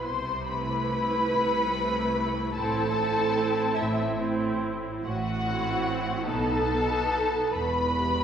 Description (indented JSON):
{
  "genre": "classical, slow romantic movement for string orchestra",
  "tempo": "48 BPM (dotted quarters)",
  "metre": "6/8",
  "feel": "rubato",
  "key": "A minor",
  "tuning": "A4 = 440 Hz",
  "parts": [
    { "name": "muted studio violin section", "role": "melody", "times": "0.0-8.2 s", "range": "E5 to C6", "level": "-29 LUFS", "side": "left 4 dB", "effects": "none" },
    { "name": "muted studio violin section", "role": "second line", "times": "0.0-8.2 s", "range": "E4 to C5", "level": "-30 LUFS", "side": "right 2 dB", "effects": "none" },
    { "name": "muted studio viola section", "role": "accompaniment", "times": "0.0-8.2 s", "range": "A3 to G4", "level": "-31 LUFS", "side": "right 2 dB", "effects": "none" },
    { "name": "muted studio cello section", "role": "bass", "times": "0.0-8.2 s", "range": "E2 to C3", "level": "-33 LUFS", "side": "right 2 dB", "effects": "none" },
    { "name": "muted studio double bass section", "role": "bass", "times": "0.0-8.2 s", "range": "E1 to C2", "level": "-35 LUFS", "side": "right 3 dB", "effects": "none" }
  ],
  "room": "wet scoring stage reverb, RT60 1.9 s",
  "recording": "heard from further back in the room",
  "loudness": "-24 LUFS",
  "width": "side -8 dB against mid",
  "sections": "0.0-8.2 A section",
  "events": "none",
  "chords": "0.0 Am/C; 2.5 Am; 6.3 B; 7.5 Em"
}